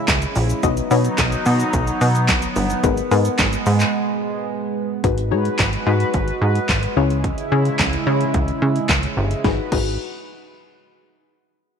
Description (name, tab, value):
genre	dance-pop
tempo	109 BPM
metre	4/4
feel	straight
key	G# minor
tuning	A4 = 440 Hz
part	chorused pulse-width pad	sustained chords	0.0-9.7 s	C#3 to B4	-24 LUFS	right 2 dB	sidechain pumping
part	plucky analog bass	bass	0.1-10.0 s	G1 to C#3	-19 LUFS	right 1 dB	sidechain pumping
part	pop drum kit	drums	0.1-9.8 s	crash cymbal, handclaps, hi-hat, kick drum, shaker, snare drum	-22 LUFS	equal	overdrive
part	group handclap	percussion	0.1-3.5 s	none	-33 LUFS	right 13 dB	none
part	soft round pluck	accompaniment	0.6-10.0 s	B3 to D#5	-23 LUFS	left 12 dB	chorus, sidechain pumping
room	moderate echo chamber reverb, RT60 2.3 s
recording	1960s-style stereo with parts hard left and right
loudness	-17 LUFS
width	side -6 dB against mid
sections	0.0-5.0 A section; 5.0-9.4 B section; 9.4-11.6 C section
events	break 3.9-5.0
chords	0.0 C#m; 0.6 B; 2.8 G#madd9; 5.0 G#m7; 7.0 C#m; 9.4 G#m7